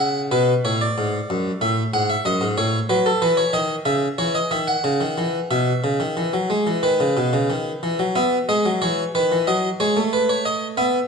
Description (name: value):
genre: classical, baroque-style two-part invention for harpsichord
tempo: 92 BPM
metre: 4/4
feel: straight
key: E major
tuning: A4 = 444 Hz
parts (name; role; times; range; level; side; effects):
- harpsichord; solo; 0.0-11.0 s; F#2 to F#5; -18 LUFS; equal; none
room: wet recital hall reverb, RT60 1.6 s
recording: nothing above 10.6 kHz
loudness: -18 LUFS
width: side -5 dB against mid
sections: 0.0-8.2 A section; 8.2-11.1 B section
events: none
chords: 0.3 C#5; 1.6 F#m; 2.9 F#m7; 4.2 F#5; 5.5 E/B; 6.8 B; 8.2 E; 9.5 D#dim/F#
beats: | 0.32 0.98 1.62 2.26 | 2.90 3.54 4.19 4.84 | 5.50 6.17 6.83 7.50 | 8.16 8.82 9.48 10.13 | 10.78